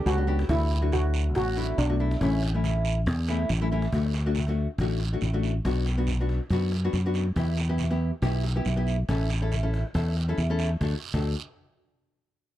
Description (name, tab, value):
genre	calypso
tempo	139 BPM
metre	4/4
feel	straight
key	D major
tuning	A4 = 440 Hz
part	steel pan	melody	0.0-3.5 s	C#4 to F#4	-29 LUFS	right 1 dB	none
part	nylon-string guitar	accompaniment	0.0-11.3 s	A3 to A4	-31 LUFS	left 2 dB	none
part	fingered electric bass	bass	0.1-11.3 s	A1 to F#2	-25 LUFS	equal	none
part	cajon	drums	0.1-11.2 s	none	-37 LUFS	equal	none
part	guiro	percussion	0.1-11.3 s	none	-40 LUFS	right 8 dB	none
room	little or no reverb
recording	none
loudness	-24 LUFS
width	side -13 dB against mid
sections	0.0-3.9 A section; 3.9-10.8 B section; 10.8-12.5 C section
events	none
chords	0.5 D; 2.2 A; 3.9 D; 5.6 Bm; 7.4 Em; 9.1 A; 10.8 D